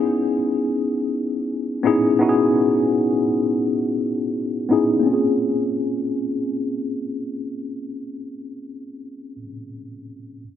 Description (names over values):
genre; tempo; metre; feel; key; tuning
R&B; 84 BPM; 4/4; straight; Bb minor; A4 = 440 Hz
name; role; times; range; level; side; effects
mellow tine electric piano; accompaniment; 0.0-10.4 s; Bb3 to Ab4; -20 LUFS; left 1 dB; medium stereo tremolo
room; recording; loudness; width
moderate lush hall reverb, RT60 2.7 s; low-pass filter; -19 LUFS; side -10 dB against mid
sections
0.0-5.1 A section; 5.1-7.9 B section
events
filter sweep 0.0-5.1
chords
0.0 Dbm9; 5.1 Bbm9